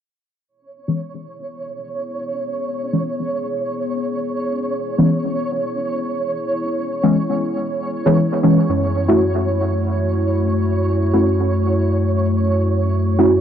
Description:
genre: dub techno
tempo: 117 BPM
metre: 4/4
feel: swing 54% on 16ths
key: C# minor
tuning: A4 = 440 Hz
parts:
  - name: dark analog pad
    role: sustained chords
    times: 1.6-13.4 s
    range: A3 to C#5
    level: -24 LUFS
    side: equal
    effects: chorus, phaser
  - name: flickering grainy texture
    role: texture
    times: 0.7-13.4 s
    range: C#5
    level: -26 LUFS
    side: right 3 dB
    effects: built-in reverb
  - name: deep mellow chord stab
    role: stabs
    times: 0.9-13.3 s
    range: E3 to F#4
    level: -18 LUFS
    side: equal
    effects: chorus, phaser, dub echo
  - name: soft dub sub bass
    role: bass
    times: 8.7-13.4 s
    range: F#2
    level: -19 LUFS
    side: equal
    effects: none
room: light reverb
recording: dry, gritty hardware recording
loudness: -17 LUFS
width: side -9 dB against mid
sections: 0.5-13.4 A section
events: none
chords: 0.5 C#m7; 8.7 F#m7

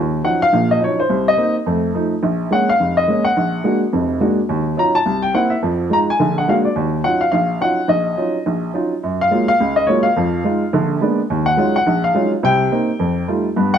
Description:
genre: jazz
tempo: 212 BPM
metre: 4/4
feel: swing 60% on 8ths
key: Eb minor, F# major from 9.0 s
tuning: A4 = 440 Hz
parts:
  - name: warm upright piano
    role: solo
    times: 0.0-13.8 s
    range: F1 to Bb5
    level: -15 LUFS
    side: equal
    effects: none
room: moderate large studio reverb, RT60 1.2 s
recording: none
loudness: -15 LUFS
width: side -8 dB against mid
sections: 0.0-9.0 A section; 9.0-13.8 B section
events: none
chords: 0.0 Ebm9; 1.1 Cm7; 1.7 F7; 2.2 Bbm7; 3.4 Bb7b13; 4.5 Ebm9; 5.1 C7; 5.6 Fm7; 6.2 Bb7b13; 6.8 Ebm9; 9.0 F#maj9; 10.2 Fm7; 10.7 A#7b9; 11.3 D#m11; 12.4 Cm7; 13.0 F9

